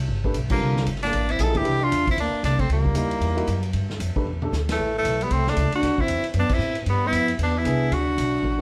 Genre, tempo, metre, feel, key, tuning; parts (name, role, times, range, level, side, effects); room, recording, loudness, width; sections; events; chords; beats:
jazz, small-group swing and bop; 230 BPM; 4/4; swing 60% on 8ths; A4 = 440 Hz
upright bass; bass; 0.0-8.6 s; G1 to A2; -27 LUFS; equal
vintage drum kit; drums; 0.1-8.5 s; crash cymbal, hi-hat, kick drum, ride cymbal, snare drum, toms; -32 LUFS; equal
warm grand piano; accompaniment; 0.2-4.5, 7.7-8.6 s; D3 to B4; -32 LUFS; equal
bright tenor saxophone; melody; 0.5-8.6 s; A3 to A4; -27 LUFS; equal
dark trombone; second line; 0.5-8.6 s; E3 to E4; -31 LUFS; equal
moderate studio reverb, RT60 0.8 s; heard from further back in the room; -23 LUFS; mono
0.0-8.6 A section
band accent 0.5, 4.7, 6.5; drum fill 4.3, 8.4
0.1 G9; 0.6 C13; 2.7 C#dim7; 3.7 G7sus2; 4.8 Am; 5.8 D9; 6.9 G6; 7.4 E7; 7.9 D6
0.09 0.35 | 0.61 0.87 1.13 1.39 | 1.65 1.91 2.17 2.44 | 2.70 2.96 3.22 3.48 | 3.74 4.00 4.26 4.52 | 4.78 5.04 5.30 5.57 | 5.83 6.09 6.35 6.61 | 6.87 7.13 7.39 7.65 | 7.91 8.17 8.43